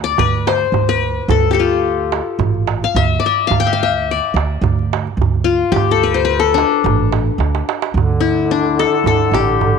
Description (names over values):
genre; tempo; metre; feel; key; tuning
Turkish makam ensemble; 108 BPM; 4/4; straight; D makam huseyni; A4 = 440 Hz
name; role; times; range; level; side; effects
qanun; melody; 0.0-9.8 s; D4 to G5; -16 LUFS; left 9 dB; none
upright bass; bass; 0.0-9.8 s; A1 to D2; -20 LUFS; right 2 dB; none
darbuka; percussion; 0.2-9.7 s; none; -20 LUFS; right 9 dB; none
clear duduk; drone; 7.9-9.8 s; D3; -21 LUFS; right 3 dB; none
room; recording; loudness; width
light reverb, small room ambience; 1960s-style stereo with parts hard left and right; -13 LUFS; side -6 dB against mid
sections
0.0-7.9 A section; 7.9-9.8 B section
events
drum fill 7.4-7.9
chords
none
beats
0.20 0.75 | 1.30 1.86 2.41 2.96 | 3.51 4.07 4.62 5.17 | 5.72 6.28 6.83 7.38 | 7.94 8.49 9.04 9.60